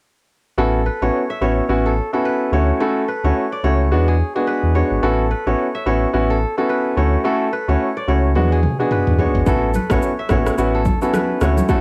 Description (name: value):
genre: afrobeats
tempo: 108 BPM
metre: 4/4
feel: swing 58% on 16ths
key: A major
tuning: A4 = 438 Hz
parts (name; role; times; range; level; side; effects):
- warm grand piano; accompaniment; 0.6-11.8 s; G#3 to F#4; -21 LUFS; equal; cassette tape
- kora; riff; 0.6-11.8 s; G#4 to E5; -27 LUFS; equal; cassette tape, analog delay
- sub bass with octave; bass; 0.6-11.6 s; G#1 to E2; -21 LUFS; equal; none
- deep house drum kit; drums; 8.4-11.8 s; kick drum, rim click, shaker, toms; -23 LUFS; equal; overdrive, cassette tape
- congas; percussion; 9.5-11.8 s; none; -28 LUFS; equal; none
room: light reverb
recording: home recording on cassette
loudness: -18 LUFS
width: mono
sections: 0.6-11.8 A section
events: drum fill 8.4-9.5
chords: 0.6 A6; 2.5 Dmaj7; 3.9 E7; 5.0 A6; 7.0 Dmaj7; 8.4 E7; 9.5 A6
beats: | 0.58 1.13 1.69 2.25 | 2.80 3.36 3.91 4.47 | 5.02 5.58 6.13 6.69 | 7.25 7.80 8.36 8.91 | 9.47 10.02 10.58 11.13 | 11.69